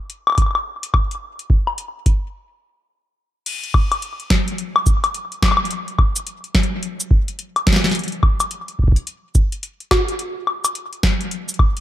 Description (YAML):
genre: IDM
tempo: 107 BPM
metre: 4/4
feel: swing 62% on 16ths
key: none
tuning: none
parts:
  - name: electro analog drum machine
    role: drums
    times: 0.1-11.8 s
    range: cabasa, crash cymbal, hi-hat, snare drum, woodblock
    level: -20 LUFS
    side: left 2 dB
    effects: analog delay
  - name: electronic kick drum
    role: drums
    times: 0.4-11.7 s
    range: none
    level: -16 LUFS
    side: equal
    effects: none
room: light reverb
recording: echo-heavy mix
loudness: -17 LUFS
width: side -13 dB against mid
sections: 0.0-3.5 A section; 3.5-11.8 B section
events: stop 2.3-3.5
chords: none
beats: 0.10 0.66 | 1.22 1.78 2.34 2.90 | 3.46 4.02 4.58 5.14 | 5.71 6.26 6.83 7.39 | 7.95 8.51 9.07 9.63 | 10.19 10.75 11.31